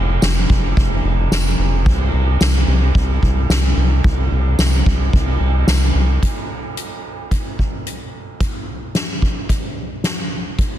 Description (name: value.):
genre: dream pop.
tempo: 110 BPM.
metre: 4/4.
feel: straight.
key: unclear.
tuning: A4 = 439 Hz.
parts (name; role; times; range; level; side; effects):
round analog bass; bass; 0.0-6.2 s; F1 to C2; -16 LUFS; equal; none.
soft-mallet drum kit; drums; 0.2-10.7 s; hi-hat, kick drum, ride cymbal, snare drum, tambourine; -18 LUFS; equal; none.
room: little or no reverb.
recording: dense, heavily limited modern master.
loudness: -15 LUFS.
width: side -12 dB against mid.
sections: 0.0-6.2 A section; 6.2-10.8 B section.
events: none.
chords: none.